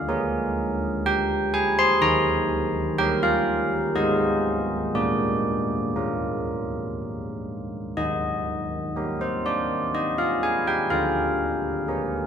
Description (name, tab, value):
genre	classical, tune for church bells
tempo	61 BPM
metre	3/4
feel	straight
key	Eb major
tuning	A4 = 439 Hz
part	carillon bells	solo	0.0-12.3 s	D3 to C6	-22 LUFS	equal	none
room	moderate scoring stage reverb, RT60 1.8 s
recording	close, detailed microphones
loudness	-22 LUFS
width	side -8 dB against mid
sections	0.0-12.3 A section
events	none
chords	0.0 Bb7(no3); 2.0 Eb; 4.0 Ab; 5.0 Bb; 8.0 Eb; 10.9 Bb7/D